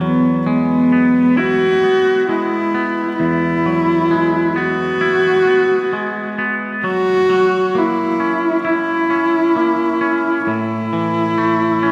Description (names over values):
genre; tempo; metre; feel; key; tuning
post-rock; 66 BPM; 4/4; straight; E major; A4 = 445 Hz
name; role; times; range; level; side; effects
dark cello; melody; 0.0-11.9 s; B3 to F#4; -17 LUFS; equal; digital delay
twangy electric guitar; arpeggios; 0.0-11.9 s; E2 to E4; -22 LUFS; equal; spring reverb, slapback echo, digital delay
room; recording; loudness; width
wet lush hall reverb, RT60 2.3 s; big arena sound; -16 LUFS; mono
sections
0.0-11.9 A section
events
none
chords
0.0 Eadd9; 6.8 F#7; 10.5 A5